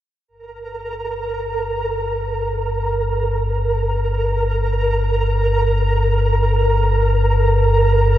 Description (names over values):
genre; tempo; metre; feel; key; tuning
dark ambient drone; free time; none; none; G minor; A4 = 437 Hz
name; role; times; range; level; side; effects
deep rumbling drone; drone; 1.1-8.2 s; G1 to G2; -18 LUFS; equal; built-in reverb
flickering grainy texture; texture; 0.4-8.2 s; Bb4; -20 LUFS; right 1 dB; built-in reverb, lush chorus
room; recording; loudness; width
wet huge ambient reverb, RT60 7.3 s; dreamy mix soaked in reverb; -16 LUFS; side -13 dB against mid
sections
0.3-8.2 A section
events
none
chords
0.3 Gm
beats
free time